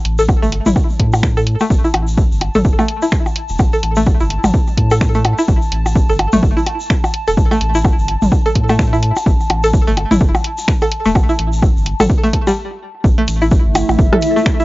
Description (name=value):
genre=minimal techno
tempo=127 BPM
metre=4/4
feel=swing 58% on 16ths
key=unclear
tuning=A4 = 441 Hz
part: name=saturated sub bass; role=bass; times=0.0-14.1 s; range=E1 to A2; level=-18 LUFS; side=equal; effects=tube saturation, sidechain pumping
part: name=warbly tape-like pad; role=texture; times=0.0-14.6 s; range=A3 to A5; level=-24 LUFS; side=equal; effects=chorus, built-in reverb, sidechain pumping
part: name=punchy analog drum machine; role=drums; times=0.1-14.6 s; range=finger snaps, hi-hat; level=-21 LUFS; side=equal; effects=none
part: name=string-like resonator pluck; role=riff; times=0.2-14.6 s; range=G3 to A4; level=-18 LUFS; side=equal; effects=chorus, sidechain pumping, tape echo
part: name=egg shaker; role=percussion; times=0.2-14.6 s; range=none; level=-34 LUFS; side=left 2 dB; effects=none
part: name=electronic kick drum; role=drums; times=0.3-14.6 s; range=none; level=-14 LUFS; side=equal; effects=none
part: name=minimal click drum kit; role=percussion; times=0.3-14.2 s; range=percussion blips, rim click, toms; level=-17 LUFS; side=equal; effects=analog delay
part: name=flickering grainy texture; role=texture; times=13.3-14.6 s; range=E3 to E4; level=-28 LUFS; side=right 5 dB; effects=none
room=little or no reverb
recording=dry, gritty hardware recording, nothing above 7.6 kHz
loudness=-12 LUFS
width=side -19 dB against mid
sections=0.0-13.0 A section; 13.0-14.6 B section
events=fade-in on ambient pad 0.0-13.0; stop 12.6-13.0; drop 13.0-14.6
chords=0.0 A5